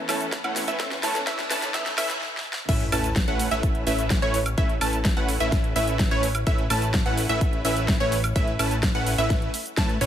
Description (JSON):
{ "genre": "EDM, festival progressive house", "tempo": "127 BPM", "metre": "4/4", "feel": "straight", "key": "A major", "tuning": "A4 = 440 Hz", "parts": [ { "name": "clear symphonic string section", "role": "sustained chords", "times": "0.0-2.6 s", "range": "E3 to A4", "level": "-38 LUFS", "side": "left 2 dB", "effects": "sidechain pumping" }, { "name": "riser and sub drop", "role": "sound effects", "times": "0.0-4.6 s", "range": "none", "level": "-36 LUFS", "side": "equal", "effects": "none" }, { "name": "wide unison pluck", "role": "arpeggios", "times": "0.1-10.1 s", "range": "C#5 to A5", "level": "-29 LUFS", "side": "right 1 dB", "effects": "sidechain pumping, tape echo" }, { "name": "supersaw stab", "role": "riff", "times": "0.1-10.1 s", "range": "A3 to A5", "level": "-28 LUFS", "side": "right 1 dB", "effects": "sidechain pumping, low-pass filter, tape echo" }, { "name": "big-room dance drum kit", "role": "drums", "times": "0.1-10.1 s", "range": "cabasa, crash cymbal, hi-hat, snare drum, woodblock", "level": "-29 LUFS", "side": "equal", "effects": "overdrive, high-pass filter on snare, high-pass filter on hats, high-pass filter on perc, high-pass filter on cymbals" }, { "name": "electronic kick drum", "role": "drums", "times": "0.3-9.9 s", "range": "none", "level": "-24 LUFS", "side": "equal", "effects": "overdrive, high-pass filter on kick" }, { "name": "fat analog bass", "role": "bass", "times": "2.7-10.1 s", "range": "A1 to A2", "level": "-28 LUFS", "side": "equal", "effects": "sidechain pumping" } ], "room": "light reverb, digital ambience", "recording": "high-pass filter", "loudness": "-21 LUFS", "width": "side -10 dB against mid", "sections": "0.0-2.7 A section; 2.7-10.1 B section", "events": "build-up 0.0-2.7; drum fill 0.0-2.2, 2.2-2.7; riser 0.0-2.2; filter sweep on supersaw synth 0.0-2.7; break 2.2-2.7; drop 2.7-10.1; impact 2.7-4.6", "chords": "0.0 Aadd9" }